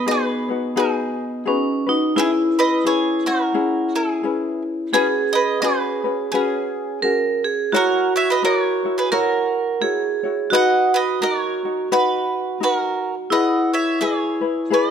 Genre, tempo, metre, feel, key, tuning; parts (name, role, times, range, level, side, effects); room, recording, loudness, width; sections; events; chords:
Hawaiian; 86 BPM; 4/4; swing 60% on 8ths; B major; A4 = 440 Hz
bowl-back mandolin; melody; 0.0-14.9 s; C#4 to F#5; -22 LUFS; right 3 dB
vibraphone with hard mallets; second line; 0.0-14.9 s; B3 to A#4; -21 LUFS; right 2 dB
ukulele; accompaniment; 0.0-14.9 s; C#4 to C#5; -24 LUFS; left 7 dB
light reverb; close, detailed microphones; -17 LUFS; side -8 dB against mid
0.0-14.9 A section
0.0 B6; 2.2 E6; 4.9 C#7sus4; 7.7 F#7; 10.5 Bmaj7; 13.3 Emaj7